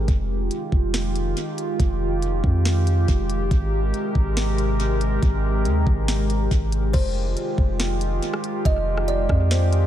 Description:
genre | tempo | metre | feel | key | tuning
hip hop, atmospheric cloud-rap | 140 BPM | 4/4 | half-time | unclear | A4 = 441 Hz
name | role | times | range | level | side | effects
warbly tape-like pad | sustained chords | 0.0-9.9 s | C3 to Bb4 | -26 LUFS | equal | chorus, built-in reverb, sidechain pumping
long sustained 808-style bass | bass | 0.0-9.9 s | F1 to F2 | -22 LUFS | equal | none
trap drum kit | drums | 0.1-9.8 s | crash cymbal, hi-hat, kick drum, rim click, snare drum | -23 LUFS | equal | vintage 12-bit sampler grit, tape echo
kalimba | melody | 6.9-9.9 s | C5 to Eb5 | -28 LUFS | right 2 dB | tape echo
room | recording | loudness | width
little or no reverb | echo-heavy mix | -19 LUFS | side -11 dB against mid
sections
0.0-6.9 A section; 6.9-9.9 B section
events
none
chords
0.1 Fm9; 3.5 Abmaj9; 6.9 Fm9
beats
| 0.08 0.51 0.94 1.37 | 1.80 2.23 2.65 3.08 | 3.51 3.94 4.37 4.80 | 5.22 5.65 6.08 6.51 | 6.94 7.37 7.80 8.22 | 8.65 9.08 9.51

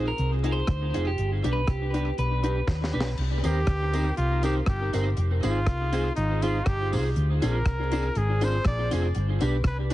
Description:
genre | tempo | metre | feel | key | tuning
ska | 120 BPM | 4/4 | straight | C minor | A4 = 439 Hz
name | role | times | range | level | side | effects
electric guitar at the edge of break-up | melody | 0.0-2.9 s | G4 to C5 | -33 LUFS | right 1 dB | wide subtle chorus, tape echo
electric guitar at the edge of break-up | accompaniment | 0.0-9.9 s | D4 to C5 | -34 LUFS | right 4 dB | analog chorus, tape echo
dark upright piano | stabs | 0.0-9.9 s | B3 to B4 | -32 LUFS | left 3 dB | tape echo
hollow-body short-scale fingered electric bass | bass | 0.0-9.9 s | F1 to Eb2 | -26 LUFS | equal | none
deep reggae drum kit | drums | 0.2-9.9 s | crash cymbal, hi-hat, kick drum, rim click, snare drum | -29 LUFS | equal | tape echo
tambourine | percussion | 3.4-9.9 s | none | -48 LUFS | left 2 dB | none
clear trumpet | melody | 3.5-9.8 s | Eb4 to D5 | -31 LUFS | equal | tape echo
room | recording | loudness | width
light reverb | heavily compressed radio sound, vinyl crackle, nothing above 10.7 kHz | -23 LUFS | side -15 dB against mid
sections
0.0-3.2 A section; 3.2-9.9 B section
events
drum fill 2.7-3.2; trumpet solo 3.2-9.9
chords
0.0 Fm7; 1.2 G; 3.2 Cm7; 5.2 Fm7; 7.2 Dm7b5; 9.1 G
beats
0.18 0.68 | 1.18 1.68 2.18 2.68 | 3.17 3.67 4.17 4.67 | 5.17 5.67 6.17 6.66 | 7.16 7.66 8.15 8.65 | 9.15 9.65

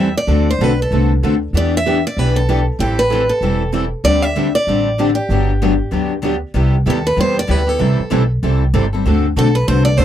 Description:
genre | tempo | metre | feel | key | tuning
acoustic string swing (jazz manouche) | 192 BPM | 4/4 | swing 60% on 8ths | G major, C major from 6.6 s | A4 = 441 Hz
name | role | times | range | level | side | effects
picked steel-string acoustic guitar | melody | 0.0-10.0 s | G4 to E5 | -19 LUFS | right 1 dB | none
picked steel-string acoustic guitar | accompaniment | 0.0-10.0 s | C3 to A4 | -19 LUFS | left 6 dB | none
picked steel-string acoustic guitar | accompaniment | 0.0-10.0 s | C3 to B4 | -22 LUFS | right 9 dB | none
upright bass | bass | 0.0-10.0 s | E1 to E2 | -17 LUFS | equal | none
room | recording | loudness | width
light reverb | dry, close 1970s-style studio recording | -13 LUFS | side -10 dB against mid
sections
0.0-6.6 A section; 6.6-10.0 B section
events
none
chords
0.3 D7; 1.5 Em7; 2.8 Am7; 4.0 D7sus4; 5.3 Gmaj7; 6.6 Cmaj7; 7.8 Am7; 9.1 D7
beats
| 0.29 0.60 0.92 1.23 | 1.54 1.86 2.17 2.48 | 2.79 3.11 3.42 3.73 | 4.05 4.36 4.67 4.99 | 5.30 5.61 5.92 6.24 | 6.55 6.86 7.18 7.49 | 7.80 8.12 8.43 8.74 | 9.05 9.37 9.68 9.99

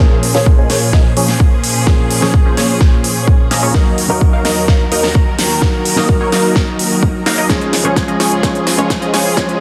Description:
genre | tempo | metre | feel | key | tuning
EDM, festival progressive house | 128 BPM | 4/4 | straight | Bb minor | A4 = 440 Hz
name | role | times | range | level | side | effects
felt-muted upright piano | accompaniment | 0.0-9.6 s | Bb2 to Bb4 | -21 LUFS | equal | sidechain pumping, dub echo
rich symphonic string section | sustained chords | 0.0-9.6 s | Db2 to Bb4 | -24 LUFS | equal | sidechain pumping, low-pass filter
supersaw stab | riff | 0.0-9.6 s | F3 to F5 | -20 LUFS | equal | phaser, sidechain pumping, low-pass filter, dub echo
big-room dance drum kit | drums | 0.0-9.6 s | hi-hat, snare drum | -20 LUFS | equal | high-pass filter on hats, small room ambience, high-pass filter on snare
electronic kick drum | drums | 0.0-9.5 s | none | -14 LUFS | equal | small room ambience
riser | sound effects | 9.1-9.6 s | none | -34 LUFS | equal | none
room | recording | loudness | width
moderate lush hall reverb, RT60 1.5 s, digital ambience | dense, heavily limited modern master, high-pass filter | -13 LUFS | mono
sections
0.0-9.6 A section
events
build-up 0.0-9.6; drum fill 0.0-9.6; filter sweep on supersaw synth 0.0-9.6; filter sweep 0.0-9.6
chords
0.0 Bbm7; 3.7 Ebm; 7.5 Db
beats
| 0.00 0.47 0.93 1.40 | 1.87 2.34 2.81 3.28 | 3.75 4.21 4.68 5.15 | 5.62 6.09 6.56 7.03 | 7.50 7.96 8.43 8.90 | 9.37

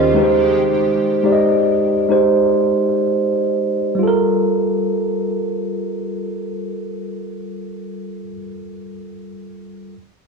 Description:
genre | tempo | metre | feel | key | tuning
R&B | 70 BPM | 4/4 | swing 54% on 16ths | unclear | A4 = 438 Hz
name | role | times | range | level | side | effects
mellow tine electric piano | accompaniment | 0.0-10.0 s | Eb3 to Eb5 | -16 LUFS | right 1 dB | slow stereo tremolo, cassette tape
lush unison pad | sustained chords | 0.0-0.6 s | Eb2 to G4 | -26 LUFS | right 2 dB | chorus, cassette tape
room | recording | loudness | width
moderate studio reverb, RT60 0.6 s | home recording on cassette, small room ambience | -15 LUFS | side -4 dB against mid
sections
0.0-4.0 A section; 4.0-7.4 B section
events
none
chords
0.2 Abmaj7; 4.0 Gm9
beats
| 0.58 1.44 2.30 3.15 | 4.01 4.87 5.73 6.58

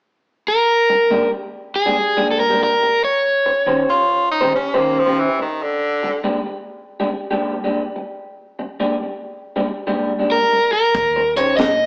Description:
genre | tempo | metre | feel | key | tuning
electric blues shuffle | 94 BPM | 4/4 | swing 65% on 8ths | unclear | A4 = 440 Hz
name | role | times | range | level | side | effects
overdriven semi-hollow guitar | melody | 0.5-4.9, 10.3-11.9 s | Ab4 to Eb5 | -15 LUFS | equal | none
electric guitar through a small old amp | riff | 0.9-11.6 s | Bb2 to C5 | -20 LUFS | equal | spring reverb
edgy tenor saxophone | second line | 3.9-6.2 s | D3 to F4 | -18 LUFS | equal | none
vintage muted fingered electric bass | bass | 10.9-11.9 s | Eb2 to Bb2 | -33 LUFS | equal | none
compact cocktail drum kit | drums | 10.9-11.8 s | hi-hat, kick drum, snare drum | -19 LUFS | equal | none
room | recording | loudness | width
moderate studio reverb, RT60 1.0 s | band playing live in one room, small speaker sound | -15 LUFS | side -32 dB against mid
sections
0.7-11.9 A section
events
none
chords
0.0 N.C.; 0.7 Bb6; 3.3 Eb6; 5.8 Bb6; 11.0 Eb13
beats
0.06 | 0.70 1.33 1.98 2.62 | 3.26 3.90 4.54 5.18 | 5.82 6.46 7.10 7.74 | 8.38 9.03 9.67 10.31 | 10.96 11.60

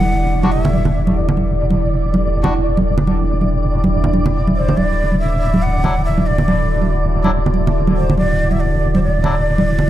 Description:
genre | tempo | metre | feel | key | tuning
deep dubstep | 141 BPM | 4/4 | swing 59% on 16ths, half-time | E minor | A4 = 442 Hz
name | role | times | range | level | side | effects
breathy bright low ney | melody | 0.0-1.2, 4.6-9.9 s | C5 to F#5 | -24 LUFS | equal | dub echo
overtone-sweeping drone | sustained chords | 0.0-9.9 s | D3 to E4 | -23 LUFS | right 2 dB | chorus, built-in reverb, phaser
deep soft wobble bass | bass | 0.0-9.9 s | D1 to E1 | -18 LUFS | equal | chorus
congas | percussion | 0.0-9.9 s | none | -19 LUFS | right 2 dB | none
flickering grainy texture | texture | 0.0-9.9 s | D5 | -25 LUFS | equal | built-in reverb
melodica | stabs | 0.4-2.5, 5.8-9.3 s | F#3 to F#4 | -26 LUFS | left 2 dB | dub echo
room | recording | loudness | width
light reverb | dark, warm production | -14 LUFS | side -13 dB against mid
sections
0.0-9.9 A section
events
none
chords
0.0 Em7; 4.8 Dadd9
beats
0.09 0.52 0.94 | 1.37 1.79 2.22 2.65 | 3.07 3.50 3.92 4.35 | 4.77 5.20 5.62 6.05 | 6.48 6.90 7.33 7.75 | 8.18 8.60 9.03 9.46 | 9.88

